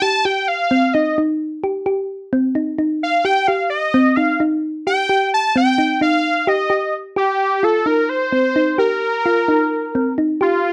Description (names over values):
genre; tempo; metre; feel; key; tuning
progressive instrumental, progressive; 260 BPM (eighths); 7/8; straight; C dorian; A4 = 437 Hz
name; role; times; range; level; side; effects
lead with added fifth; melody; 0.0-10.7 s; F4 to A5; -19 LUFS; equal; chorus, phaser
thumb-piano-like synth pluck; arpeggios; 0.0-10.7 s; C4 to G4; -21 LUFS; equal; chorus
room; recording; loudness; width
moderate studio reverb, RT60 0.6 s; none; -18 LUFS; mono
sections
0.0-7.2 A section; 7.2-10.7 B section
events
analog synth lead solo 0.0-7.2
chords
0.0 Cm; 7.2 Cm7